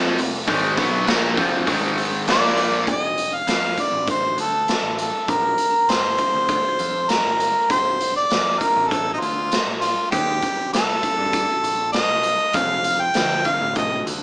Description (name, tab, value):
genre	classic rock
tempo	99 BPM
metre	4/4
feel	straight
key	unclear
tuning	A4 = 439 Hz
part	overdriven electric guitar	riff	0.0-2.9, 12.6-14.2 s	F2 to F4	-23 LUFS	left 1 dB	none
part	sludgy distorted guitar	riff	0.0-2.9, 12.6-14.2 s	F2 to F4	-26 LUFS	right 1 dB	overdrive
part	growling picked electric bass	bass	0.0-14.2 s	F1 to F3	-31 LUFS	equal	overdrive
part	raw garage drum kit	drums	0.2-14.2 s	hi-hat, kick drum, snare drum	-23 LUFS	equal	none
part	clear harmonica	melody	2.3-14.1 s	Eb4 to G5	-19 LUFS	equal	none
room	light reverb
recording	band playing live in one room, small speaker sound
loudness	-17 LUFS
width	side -27 dB against mid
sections	0.0-2.9 A section; 2.9-14.2 B section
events	none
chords	0.0 F5; 1.7 Ab5; 2.3 Bb5; 2.9 F; 5.3 Bb; 7.7 F; 10.1 Eb; 12.6 F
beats	| 0.48 1.08 1.68 2.28 | 2.88 3.48 4.09 4.69 | 5.29 5.90 6.50 7.11 | 7.71 8.31 8.92 9.53 | 10.13 10.74 11.34 11.95 | 12.55 13.16 13.77